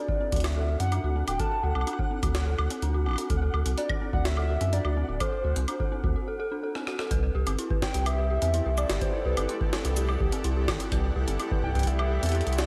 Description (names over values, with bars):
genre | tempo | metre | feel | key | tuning
IDM | 126 BPM | 4/4 | straight | C lydian | A4 = 441 Hz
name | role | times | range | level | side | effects
warbly nostalgic lead | melody | 0.0-12.7 s | B4 to A5 | -35 LUFS | equal | chorus, cassette tape, tape echo
dark detuned synth bell | arpeggios | 0.0-12.7 s | C4 to B4 | -36 LUFS | equal | chorus, tape echo
flickering grainy texture | texture | 0.2-6.2 s | F#5 | -47 LUFS | equal | built-in reverb
electronic kick drum | drums | 0.1-11.9 s | none | -32 LUFS | equal | none
warm sub bass | bass | 0.3-12.7 s | D1 to F#2 | -29 LUFS | equal | tube saturation
jungle sampler-style drum kit | drums | 0.3-12.7 s | hi-hat, rim click, shaker, snare drum, woodblock | -37 LUFS | equal | tape echo
granular cloud pad | sustained chords | 8.1-12.7 s | E4 to F#5 | -38 LUFS | equal | built-in reverb
room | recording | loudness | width
moderate lush hall reverb, RT60 2.2 s | dreamy mix soaked in reverb | -27 LUFS | mono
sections
0.0-7.1 A section; 7.1-12.7 B section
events
break 6.2-7.1; drum fill 6.8-7.1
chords
0.0 D7; 7.1 Cmaj7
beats
0.44 0.92 | 1.40 1.87 2.35 2.82 | 3.30 3.78 4.25 4.73 | 5.21 5.68 6.16 6.63 | 7.11 7.59 8.06 8.54 | 9.01 9.49 9.97 10.44 | 10.92 11.39 11.87 12.35